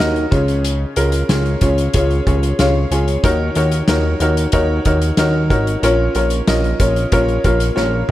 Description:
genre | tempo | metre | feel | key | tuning
piano-driven pop | 93 BPM | 4/4 | straight | Eb minor | A4 = 440 Hz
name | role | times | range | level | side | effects
clear upright piano | accompaniment | 0.0-8.1 s | Bb2 to Ab5 | -17 LUFS | left 1 dB | none
fat analog bass | bass | 0.0-8.0 s | Ab1 to Eb2 | -18 LUFS | equal | none
loose indie drum kit | drums | 0.0-8.1 s | hi-hat, kick drum, snare drum, toms | -20 LUFS | equal | none
room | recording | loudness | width
light reverb, small room ambience | none | -14 LUFS | side -14 dB against mid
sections
0.0-8.1 A section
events
upright piano fill 2.3-3.2; drum fill 7.8-8.1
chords
0.3 Db; 3.2 Ebm7; 5.8 Bbm

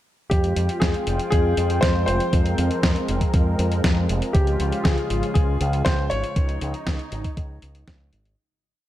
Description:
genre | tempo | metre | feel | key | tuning
italo disco | 119 BPM | 4/4 | straight | F minor | A4 = 440 Hz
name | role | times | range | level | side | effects
clear concert grand piano | melody | 0.3-7.6 s | G4 to Db5 | -27 LUFS | left 2 dB | tape echo, shimmer reverb
warm analog pad | sustained chords | 0.3-8.4 s | Db3 to G5 | -27 LUFS | equal | chorus, vintage 12-bit sampler grit, shimmer reverb
fingered electric bass with an envelope filter | bass | 0.3-8.3 s | F1 to F2 | -24 LUFS | equal | tube saturation
dusty soul sampler-style drum kit | drums | 0.3-8.4 s | hi-hat, snare drum | -27 LUFS | equal | none
electronic kick drum | drums | 0.3-8.0 s | none | -21 LUFS | equal | none
room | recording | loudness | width
little or no reverb | none | -19 LUFS | side -13 dB against mid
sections
0.3-8.4 verse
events
fade-out 5.7-8.4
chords
0.3 Fmadd9; 4.3 Db

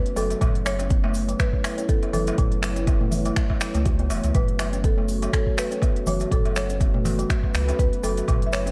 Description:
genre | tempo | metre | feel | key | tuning
afro house | 122 BPM | 4/4 | swing 56% on 16ths | F# minor | A4 = 440 Hz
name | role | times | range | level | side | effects
buzzing marimba with medium mallets | melody | 0.0-8.7 s | A4 to E5 | -33 LUFS | equal | dub echo
dark analog pad | sustained chords | 0.0-8.7 s | A3 to C#5 | -35 LUFS | equal | chorus, phaser, sidechain pumping
kalimba | arpeggios | 0.0-8.7 s | E3 to F#4 | -33 LUFS | equal | vintage 12-bit sampler grit, sidechain pumping, dub echo
afro-pop drum kit | drums | 0.1-8.7 s | finger snaps, hi-hat, toms | -33 LUFS | equal | studio reverb
round analog bass | bass | 0.2-8.7 s | E1 to C#2 | -29 LUFS | equal | sidechain pumping
cabasa | percussion | 0.2-8.7 s | none | -43 LUFS | equal | none
darbuka | percussion | 0.2-8.7 s | none | -37 LUFS | equal | none
electronic kick drum | drums | 0.4-8.4 s | none | -25 LUFS | equal | studio reverb
room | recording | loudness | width
light reverb, small room ambience | dark, warm production | -23 LUFS | mono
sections
0.0-8.7 A section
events
none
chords
0.4 A/F#; 4.3 F#m

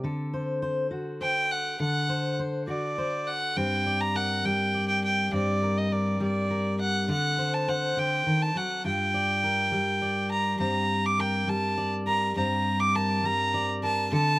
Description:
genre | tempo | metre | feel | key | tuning
folk | 68 BPM (dotted quarters) | 6/8 | straight | G harmonic minor | A4 = 440 Hz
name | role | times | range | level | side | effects
fingerpicked steel-string acoustic guitar | accompaniment | 0.0-14.4 s | G2 to D5 | -28 LUFS | left 1 dB | none
warm fiddle | melody | 1.2-14.4 s | D5 to D6 | -26 LUFS | right 1 dB | slapback echo
room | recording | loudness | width
little or no reverb | recorded outdoors, with no room sound | -24 LUFS | side -19 dB against mid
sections
0.0-10.6 A section; 10.6-14.4 B section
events
build-up 10.6-14.4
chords
0.0 D7; 3.6 Gm; 7.1 D7; 8.8 Gm7; 10.6 Gm

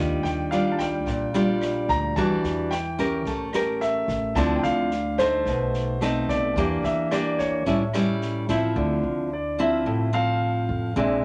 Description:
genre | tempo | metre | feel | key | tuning
bossa nova | 109 BPM | 4/4 | straight | D minor | A4 = 441 Hz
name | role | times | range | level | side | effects
nylon-string guitar | accompaniment | 0.0-11.2 s | A2 to Bb4 | -26 LUFS | equal | none
upright bass | bass | 0.0-11.2 s | A1 to F2 | -34 LUFS | equal | none
warm concert grand piano | melody | 0.2-11.2 s | C5 to Bb5 | -30 LUFS | equal | none
open jazz drum kit | drums | 0.2-8.6 s | kick drum, rim click, snare drum | -39 LUFS | equal | none
room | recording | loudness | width
wet small room reverb, RT60 0.5 s | none | -24 LUFS | mono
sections
0.0-8.8 A section; 8.8-11.2 B section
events
grand piano solo 8.8-11.2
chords
0.0 Ebmaj9; 2.2 Em9; 3.3 A7b9; 4.4 Dm9; 5.5 B7b9; 6.6 Em7b5; 7.7 A7; 8.8 Dm9

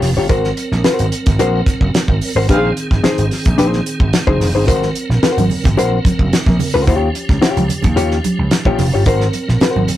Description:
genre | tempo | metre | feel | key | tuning
funk | 110 BPM | 4/4 | straight | unclear | A4 = 440 Hz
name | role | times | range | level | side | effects
hollow-body jazz guitar | accompaniment | 0.0-9.8 s | Eb4 to Db5 | -16 LUFS | left 4 dB | none
tonewheel organ | sustained chords | 0.0-10.0 s | Eb3 to Bb4 | -24 LUFS | right 2 dB | slow rotary speaker, overdrive, chorus vibrato
vintage slap bass | bass | 0.0-9.9 s | F1 to Eb2 | -17 LUFS | right 1 dB | none
damped 70s drum kit | drums | 0.0-10.0 s | hi-hat, kick drum, snare drum | -16 LUFS | right 1 dB | none
mellow horn section | second line | 2.5-2.7 s | C4 to F5 | -19 LUFS | right 2 dB | none
congas | percussion | 4.7-10.0 s | none | -20 LUFS | right 2 dB | none
room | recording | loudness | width
moderate studio ambience, RT60 0.5 s | rough rehearsal-room recording, warm saturation | -12 LUFS | side -13 dB against mid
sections
0.0-10.0 A section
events
band accent 2.5-4.7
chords
0.3 Ab9; 2.5 Bb9sus4; 4.7 Ab9; 6.9 Eb9; 9.1 Ab9

